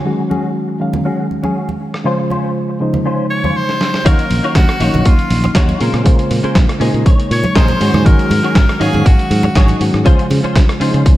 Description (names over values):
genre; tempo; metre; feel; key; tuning
nu-disco, nu disco; 120 BPM; 4/4; swing 53% on 16ths; Eb dorian; A4 = 441 Hz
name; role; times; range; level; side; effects
reed electric piano; accompaniment; 0.0-11.2 s; Db3 to F5; -18 LUFS; equal; sidechain pumping, tape echo
direct-recorded clean electric guitar; riff; 0.0-11.1 s; Db4 to Ab5; -22 LUFS; left 2 dB; ensemble chorus, vintage 12-bit sampler grit, low-pass filter, tape echo
congas; percussion; 0.3-10.4 s; none; -22 LUFS; right 2 dB; none
dusty soul sampler-style drum kit; drums; 1.9-11.2 s; hi-hat, rim click, snare drum; -20 LUFS; right 1 dB; small room ambience
edgy tenor saxophone; melody; 3.3-9.8 s; F4 to Db5; -21 LUFS; equal; tape echo
fingered electric bass; bass; 4.1-11.1 s; Ab1 to Db3; -16 LUFS; equal; none
electronic kick drum; drums; 4.1-11.2 s; none; -10 LUFS; equal; small room ambience
room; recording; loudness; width
moderate lush hall reverb, RT60 2.3 s; dreamy mix soaked in reverb; -11 LUFS; side -15 dB against mid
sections
0.0-4.1 A section; 4.1-11.2 B section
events
drum fill 3.7-4.1; drop 4.1-11.2; clean electric guitar fill 6.6-8.1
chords
0.0 Ab7sus4; 2.1 Dbmaj7; 4.1 Ebm9; 5.8 Bbm9; 7.8 Ab7sus4; 10.1 Dbmaj7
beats
| 0.06 0.56 1.06 1.56 | 2.06 2.56 3.06 3.56 | 4.06 4.56 5.06 5.56 | 6.06 6.56 7.06 7.56 | 8.06 8.56 9.06 9.56 | 10.06 10.56 11.06